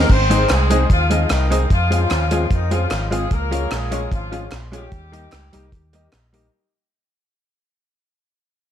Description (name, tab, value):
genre	ska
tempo	149 BPM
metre	4/4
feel	straight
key	Ab major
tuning	A4 = 441 Hz
part	dark horn section	melody	0.0-6.1 s	Eb3 to C5	-22 LUFS	left 2 dB	tape echo
part	hollow-body jazz guitar	accompaniment	0.0-6.5 s	G3 to Ab4	-26 LUFS	right 3 dB	none
part	warm upright piano	stabs	0.0-6.5 s	Eb4 to F5	-27 LUFS	left 4 dB	none
part	fingered electric bass	bass	0.0-6.5 s	Ab1 to F2	-20 LUFS	equal	none
part	deep reggae drum kit	drums	0.1-6.4 s	crash cymbal, hi-hat, kick drum, rim click	-20 LUFS	equal	none
part	group handclap	percussion	0.5-6.2 s	none	-31 LUFS	right 2 dB	none
room	moderate studio reverb, RT60 0.9 s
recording	vinyl crackle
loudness	-16 LUFS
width	side -10 dB against mid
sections	0.1-6.5 A section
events	fade-out 0.1-6.5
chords	0.1 Ab; 1.7 Fm; 3.3 Db; 4.9 Eb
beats	| 0.09 0.49 0.90 1.30 | 1.70 2.10 2.50 2.91 | 3.31 3.71 4.11 4.51 | 4.92 5.32 5.72 6.12